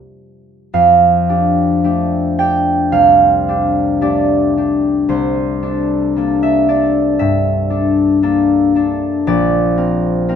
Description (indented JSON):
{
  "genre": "classical, solo harp piece",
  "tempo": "47-59 BPM",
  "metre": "4/4",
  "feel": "rubato",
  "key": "F major",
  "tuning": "A4 = 440 Hz",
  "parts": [
    { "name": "concert harp", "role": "solo", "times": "0.0-10.4 s", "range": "Bb1 to G5", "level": "-12 LUFS", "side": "equal", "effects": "none" }
  ],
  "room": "light reverb",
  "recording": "close, detailed microphones",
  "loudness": "-12 LUFS",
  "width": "side -8 dB against mid",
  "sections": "0.0-10.4 A section",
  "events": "none",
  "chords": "0.0 N.C.; 0.7 F69; 5.1 C13; 9.3 Bbadd9"
}